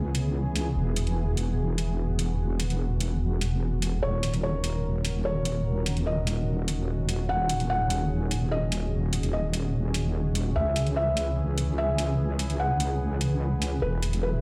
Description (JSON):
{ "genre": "heavy wobble dubstep", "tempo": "147 BPM", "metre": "4/4", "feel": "half-time", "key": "Eb phrygian", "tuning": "A4 = 440 Hz", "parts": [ { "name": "lush unison pad", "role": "sustained chords", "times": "0.0-14.4 s", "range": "Eb3 to Cb5", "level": "-37 LUFS", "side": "equal", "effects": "chorus" }, { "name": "wobble bass", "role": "bass", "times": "0.0-14.4 s", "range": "Eb1 to Db2", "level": "-29 LUFS", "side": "equal", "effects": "chorus, overdrive" }, { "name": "electronic hi-hat", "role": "drums", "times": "0.1-14.2 s", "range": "none", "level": "-36 LUFS", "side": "equal", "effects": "none" }, { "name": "felt-muted upright piano", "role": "melody", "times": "4.0-14.4 s", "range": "B4 to Gb5", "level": "-34 LUFS", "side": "equal", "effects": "delay" } ], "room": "little or no reverb", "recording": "played on a big sound system in a bare room, large studio reverb", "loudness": "-27 LUFS", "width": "mono", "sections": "0.0-14.4 A section", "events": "none", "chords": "0.0 Dbm7; 0.8 Eadd9; 4.0 Ebm7; 10.6 Dbm7; 13.8 Eadd9" }